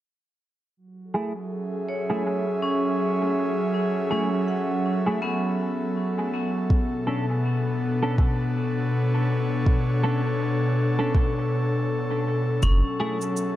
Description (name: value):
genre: ambient dub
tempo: 81 BPM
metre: 4/4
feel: swing 58% on 16ths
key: F# minor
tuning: A4 = 441 Hz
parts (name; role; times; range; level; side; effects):
- airy breathy pad; sustained chords; 0.8-13.6 s; B2 to E5; -24 LUFS; equal; chorus
- clean electric guitar; stabs; 1.1-13.2 s; A3 to A4; -31 LUFS; right 1 dB; analog chorus, low-pass filter, dub echo
- vibraphone with hard mallets; arpeggios; 1.9-8.1, 12.6-13.6 s; B3 to F#5; -30 LUFS; left 1 dB; low-pass filter, dub echo
- electronic kick drum; drums; 6.7-12.8 s; none; -22 LUFS; equal; overdrive
- warm sub bass; bass; 12.6-12.8 s; F#1; -19 LUFS; equal; none
- cabasa; drums; 12.6-13.5 s; none; -37 LUFS; right 6 dB; overdrive
- bubbling stepped-filter texture; texture; 12.6-13.6 s; C#5; -44 LUFS; right 3 dB; none
room: moderate spring reverb, RT60 2.4 s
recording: echo-heavy mix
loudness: -22 LUFS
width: side -13 dB against mid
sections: 0.8-12.6 A section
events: none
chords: 0.8 F#m7; 6.7 Bm9; 12.6 F#m7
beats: | 0.78 1.52 2.26 3.00 | 3.74 4.48 5.22 5.96 | 6.70 7.44 8.18 8.93 | 9.67 10.41 11.15 11.89 | 12.63 13.37